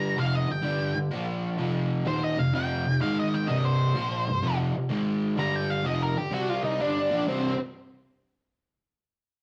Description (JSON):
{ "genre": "rock", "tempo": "126 BPM", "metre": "4/4", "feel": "swing 66% on 8ths", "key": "unclear", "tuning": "A4 = 440 Hz", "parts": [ { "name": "octave-fuzz lead guitar", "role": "melody", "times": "0.0-7.6 s", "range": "C4 to Bb5", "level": "-31 LUFS", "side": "equal", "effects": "distortion" }, { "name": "overdriven semi-hollow guitar", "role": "riff", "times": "0.0-7.5 s", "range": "C2 to C4", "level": "-28 LUFS", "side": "equal", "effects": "none" } ], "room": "moderate stone room reverb, RT60 1.0 s", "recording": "rough rehearsal-room recording, warm saturation", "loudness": "-27 LUFS", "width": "mono", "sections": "0.0-7.3 A section; 7.3-9.2 B section", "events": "none", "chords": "0.0 G5; 1.1 Bb5; 1.6 F5; 3.0 Ab5; 3.5 C5; 4.4 F5; 4.9 Ab5; 5.4 G5; 6.3 C5; 6.8 G5; 7.3 C5" }